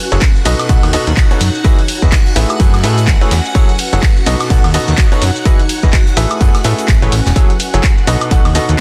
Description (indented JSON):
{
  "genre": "piano house",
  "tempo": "126 BPM",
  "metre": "4/4",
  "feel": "swing 59% on 16ths",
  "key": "unclear",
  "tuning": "A4 = 439 Hz",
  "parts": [
    { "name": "string machine, violins", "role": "sustained chords", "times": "0.0-8.8 s", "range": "F#4 to F#5", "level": "-26 LUFS", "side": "equal", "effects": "ensemble chorus, sidechain pumping" },
    { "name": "warbly tape-like pad", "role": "texture", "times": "0.0-8.8 s", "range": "C#4 to G#5", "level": "-28 LUFS", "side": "equal", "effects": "none" },
    { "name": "bright baby grand piano", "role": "riff", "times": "0.1-8.8 s", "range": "B2 to F#5", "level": "-21 LUFS", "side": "equal", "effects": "sidechain pumping, digital delay" },
    { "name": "fat analog bass", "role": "bass", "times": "0.1-8.8 s", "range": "E1 to A2", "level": "-16 LUFS", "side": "equal", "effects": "tube saturation, sidechain pumping" },
    { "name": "punchy analog drum machine", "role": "drums", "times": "0.1-8.8 s", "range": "handclaps, hi-hat, shaker, woodblock", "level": "-22 LUFS", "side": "equal", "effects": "none" },
    { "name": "electronic kick drum", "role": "drums", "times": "0.2-8.4 s", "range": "none", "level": "-13 LUFS", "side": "equal", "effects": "none" },
    { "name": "huge arena drum kit", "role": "drums", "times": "0.2-8.8 s", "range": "hi-hat, snare drum", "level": "-32 LUFS", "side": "equal", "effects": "high-pass filter on hats, high-pass filter on snare, high-pass filter on room" }
  ],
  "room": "studio reverb",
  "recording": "dense, heavily limited modern master",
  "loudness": "-12 LUFS",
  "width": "mono",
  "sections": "0.0-8.8 A section",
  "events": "none",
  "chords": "0.5 B9; 1.6 Emaj9; 2.4 Amaj9; 3.5 F#m9; 4.3 B9; 5.5 Emaj9; 6.2 Amaj9; 7.4 F#m9; 8.1 B9"
}